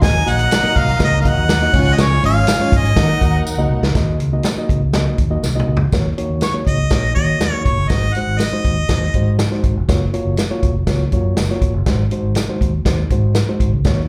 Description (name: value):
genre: uptempo 1960s-style soul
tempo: 121 BPM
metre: 4/4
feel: straight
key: Eb dorian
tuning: A4 = 440 Hz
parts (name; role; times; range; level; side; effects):
- clear harmonica; melody; 0.0-3.5, 6.4-9.4 s; Db5 to Ab5; -22 LUFS; equal; slapback echo
- rich studio string section; second line; 0.0-3.9 s; Eb4 to Bb5; -29 LUFS; equal; slapback echo
- mellow reed electric piano; accompaniment; 0.0-14.0 s; Ab3 to Eb5; -25 LUFS; equal; fast tremolo, slapback echo
- percussive tonewheel organ; sustained chords; 0.0-3.9 s; F3 to Eb4; -32 LUFS; equal; none
- fingered electric bass; bass; 0.0-14.0 s; F1 to Eb3; -20 LUFS; equal; none
- vintage drum kit; drums; 0.0-14.0 s; crash cymbal, hi-hat, kick drum, snare drum, toms; -21 LUFS; equal; none
- tambourine; percussion; 0.0-14.0 s; none; -35 LUFS; equal; none
room: light reverb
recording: live gig heard through the venue's PA, club reverb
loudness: -16 LUFS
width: mono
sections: 0.0-4.0 A section; 4.0-5.9 B section; 5.9-14.1 C section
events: drum fill 3.5-4.0, 5.4-5.9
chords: 0.0 Ebm; 1.7 Db; 3.0 Ebm; 5.9 Ebm7; 7.9 Ab7; 9.9 Gbmaj7; 11.9 Ab7